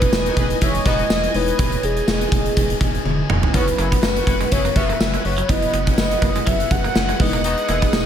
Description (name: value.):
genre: 1980s-style pop.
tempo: 123 BPM.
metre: 4/4.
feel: swing 55% on 16ths.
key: unclear.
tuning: A4 = 439 Hz.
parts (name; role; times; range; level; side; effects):
mellow horn-like synth lead; melody; 0.0-8.1 s; G#4 to F#5; -23 LUFS; equal; chorus, ping-pong delay.
FM electric piano with soft pad layer; accompaniment; 0.0-8.1 s; F#3 to C#5; -29 LUFS; left 3 dB; chorus.
heavy high-gain guitar; accompaniment; 0.0-8.1 s; E2 to F#3; -32 LUFS; left 5 dB; distortion, wide subtle chorus.
phased analog pad; sustained chords; 0.0-8.1 s; G#4 to D#6; -29 LUFS; left 1 dB; phaser, chorus.
rubbery square bass; bass; 0.0-8.1 s; E1 to F#1; -24 LUFS; equal; none.
gated 80s drum kit; drums; 0.0-8.1 s; hi-hat, kick drum, snare drum, tambourine, toms; -19 LUFS; equal; gated reverb.
warm horn section; stabs; 0.3-7.8 s; G#3 to B4; -29 LUFS; left 2 dB; ping-pong delay.
clean electric guitar; riff; 3.7-8.0 s; F#3 to B3; -29 LUFS; right 6 dB; lush chorus.
room: light reverb, small room reverb.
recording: none.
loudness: -16 LUFS.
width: side -9 dB against mid.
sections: 0.0-8.1 A section.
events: drum fill 3.1-3.5.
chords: 0.0 Emaj7; 3.5 F#7sus4; 7.2 Emaj7.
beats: 0.13 0.61 1.10 | 1.59 2.08 2.57 3.05 | 3.54 4.03 4.52 5.00 | 5.49 5.98 6.47 6.96 | 7.44 7.93.